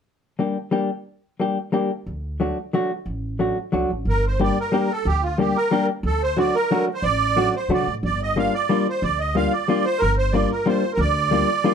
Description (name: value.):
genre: musette waltz.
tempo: 181 BPM.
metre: 3/4.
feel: straight.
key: G minor.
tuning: A4 = 440 Hz.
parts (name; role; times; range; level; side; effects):
hollow-body jazz guitar; accompaniment; 0.4-11.7 s; F#3 to G4; -21 LUFS; left 2 dB; none.
upright bass; bass; 2.1-11.4 s; G1 to C3; -25 LUFS; equal; none.
musette accordion; melody; 4.1-11.7 s; F4 to F5; -22 LUFS; right 4 dB; none.
room: moderate studio reverb, RT60 0.6 s.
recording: band playing live in one room.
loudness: -19 LUFS.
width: side -7 dB against mid.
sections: 0.1-4.1 A section; 4.1-11.7 B section.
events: none.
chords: 0.1 Gm; 2.1 D; 4.1 Gm; 6.0 D; 8.0 Gm7.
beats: | 0.05 0.39 0.73 | 1.06 1.40 1.74 | 2.07 2.40 2.73 | 3.06 3.40 3.73 | 4.07 4.40 4.73 | 5.06 5.39 5.72 | 6.05 6.38 6.71 | 7.03 7.36 7.70 | 8.03 8.36 8.69 | 9.02 9.35 9.68 | 10.01 10.34 10.66 | 10.99 11.32 11.65.